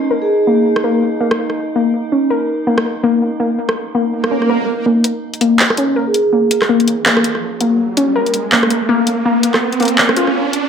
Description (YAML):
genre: half-time drum and bass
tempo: 164 BPM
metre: 4/4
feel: swing 59% on 16ths, half-time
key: unclear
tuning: A4 = 441 Hz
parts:
  - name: warbly dusty pluck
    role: arpeggios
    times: 0.0-10.3 s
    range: Bb3 to Bb4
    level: -15 LUFS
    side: left 2 dB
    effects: chorus, tape echo
  - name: metallic inharmonic drone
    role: texture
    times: 0.0-4.9 s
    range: Eb4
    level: -25 LUFS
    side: right 2 dB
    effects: chorus, built-in reverb
  - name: vibraphone with soft mallets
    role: melody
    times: 0.2-0.7, 6.1-6.6 s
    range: Ab4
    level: -18 LUFS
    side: right 2 dB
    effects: low-pass filter, tape echo
  - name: drum and bass drum kit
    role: drums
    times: 0.8-10.6 s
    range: handclaps, hi-hat, rim click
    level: -17 LUFS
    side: equal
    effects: overdrive
  - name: swell and riser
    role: sound effects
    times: 4.2-10.7 s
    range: none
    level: -20 LUFS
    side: right 3 dB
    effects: none
room: wet plate reverb, RT60 1.3 s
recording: dreamy mix soaked in reverb, high-pass filter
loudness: -12 LUFS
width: side -7 dB against mid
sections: 0.0-4.9 A section; 4.9-10.7 B section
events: filter sweep on synth pluck 0.0-4.9; swell 4.2-4.9; build-up 4.9-10.7; riser 4.9-10.7; filter sweep on vibraphone 4.9-10.7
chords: 0.0 Eb5; 4.9 N.C.